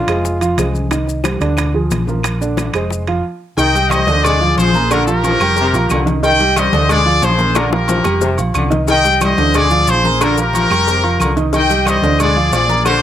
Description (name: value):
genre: latin, salsa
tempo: 181 BPM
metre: 4/4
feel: straight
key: C minor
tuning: A4 = 441 Hz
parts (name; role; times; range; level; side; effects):
- clear trombone; melody; 0.0-0.7 s; F4; -20 LUFS; equal; slapback echo
- warm concert grand piano; accompaniment; 0.0-13.0 s; D3 to Bb5; -19 LUFS; right 4 dB; none
- hollow-body short-scale fingered electric bass; bass; 0.0-13.0 s; F1 to D2; -18 LUFS; equal; none
- bongos and cowbell; percussion; 0.1-13.0 s; none; -25 LUFS; left 8 dB; slapback echo
- claves; percussion; 0.1-13.0 s; none; -30 LUFS; equal; none
- congas; percussion; 0.1-13.0 s; none; -25 LUFS; left 3 dB; none
- maracas; percussion; 0.1-13.0 s; none; -29 LUFS; left 10 dB; none
- timbales and agogo bells; percussion; 0.1-13.0 s; none; -23 LUFS; right 3 dB; none
- brilliant trumpet section; melody; 3.6-13.0 s; F4 to G5; -15 LUFS; left 2 dB; slapback echo
- brilliant trombone section; second line; 3.6-13.0 s; C3 to Ab3; -21 LUFS; left 4 dB; slapback echo
room: little or no reverb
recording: recorded outdoors, with no room sound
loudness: -12 LUFS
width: side -10 dB against mid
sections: 0.0-3.6 A section; 3.6-13.0 B section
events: stop 3.2-3.6; drum fill 7.6-8.9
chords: 0.2 Fm; 0.9 Cm; 1.6 Ddim; 2.2 Bb; 2.9 Fm; 3.6 Cm; 4.2 Dm7b5; 4.9 Bb; 5.6 Fsus2; 6.2 Cm; 6.9 Dm7b5; 7.6 Bb; 8.2 Fsus2; 8.9 Cm; 9.5 Dm7b5; 10.2 Bb; 10.9 Fsus2; 11.5 Cm; 12.2 Ddim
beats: 0.25 0.58 | 0.91 1.25 1.58 1.91 | 2.25 2.58 2.91 3.24 | 3.58 3.91 4.24 4.57 | 4.91 5.24 5.57 5.90 | 6.23 6.56 6.90 7.23 | 7.56 7.89 8.22 8.55 | 8.89 9.22 9.55 9.88 | 10.21 10.54 10.87 11.20 | 11.54 11.87 12.20 12.53 | 12.86